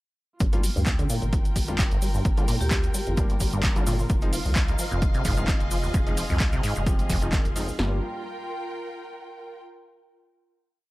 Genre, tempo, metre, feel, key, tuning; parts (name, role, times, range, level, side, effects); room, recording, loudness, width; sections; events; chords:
acid house; 130 BPM; 4/4; swing 54% on 16ths; G minor; A4 = 440 Hz
acid bass, saw; riff; 0.4-8.0 s; F1 to G3; -30 LUFS; equal; tube saturation, lush chorus, sidechain pumping, analog delay
saturated sub bass; bass; 0.4-8.0 s; F1 to D2; -28 LUFS; equal; sidechain pumping
punchy analog drum machine; drums; 0.4-7.9 s; kick drum, snare drum; -25 LUFS; equal; overdrive
punchy analog drum machine; drums; 0.4-7.7 s; handclaps, hi-hat; -32 LUFS; right 1 dB; overdrive
cabasa; percussion; 0.4-7.8 s; -38 LUFS; left 2 dB
rich studio string section; texture; 0.4-9.6 s; F4 to G5; -36 LUFS; equal; sidechain pumping
warm concert grand piano; stabs; 0.5-8.0 s; F3 to Bb4; -35 LUFS; left 1 dB; analog delay
vibraphone with hard mallets; melody; 2.6-3.2 s; G4; -35 LUFS; equal; tape echo
string machine, full ensemble; sustained chords; 4.1-7.8 s; F5; -38 LUFS; equal; ensemble chorus, sidechain pumping
small room ambience; -22 LUFS; side -19 dB against mid
0.4-7.8 groove; 7.8-9.6 final chord
filter sweep on acid bass 0.4-7.8
0.4 Gm7; 4.1 Fm7; 7.8 Gm7